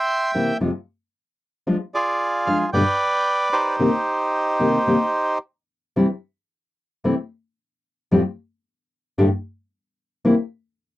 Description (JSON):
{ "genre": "tango", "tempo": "113 BPM", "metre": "4/4", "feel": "rubato", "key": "C minor, C major from 6.0 s", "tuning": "A4 = 440 Hz", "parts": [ { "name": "bandoneon", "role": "melody", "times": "0.0-5.4 s", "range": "Eb4 to C6", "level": "-20 LUFS", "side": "right 1 dB", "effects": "none" }, { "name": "nylon-string guitar", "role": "accompaniment", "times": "0.3-10.3 s", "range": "F2 to G4", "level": "-18 LUFS", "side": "left 1 dB", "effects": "none" } ], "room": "little or no reverb", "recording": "dry, close 1970s-style studio recording", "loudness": "-19 LUFS", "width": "side -16 dB against mid", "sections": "0.0-6.0 A section; 6.0-11.0 B section", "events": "none", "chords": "0.0 C7; 0.6 Fm; 1.7 Ddim/F; 2.7 G; 3.8 Cm7; 6.0 C; 7.1 Am/C; 8.1 Fadd9; 9.2 Gsus2; 10.2 C7" }